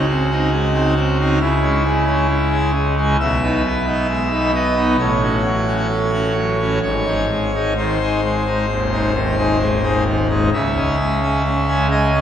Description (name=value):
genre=classical, chorale-style piece for pipe organ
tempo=66 BPM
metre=4/4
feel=straight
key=unclear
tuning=A4 = 442 Hz
part: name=pipe organ, full organ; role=solo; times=0.0-12.2 s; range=D#1 to E5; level=-15 LUFS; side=equal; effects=none
room=wet church reverb, RT60 3.0 s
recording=heard from further back in the room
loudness=-16 LUFS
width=side -9 dB against mid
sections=0.0-12.2 A section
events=none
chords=0.0 G#7/C#; 1.4 C#m; 3.2 G#m/B; 5.0 F#m/A; 6.8 G#; 10.5 C#m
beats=0.53 1.43 2.32 | 3.21 4.11 5.00 5.91 | 6.83 7.76 8.69 9.61 | 10.53 11.45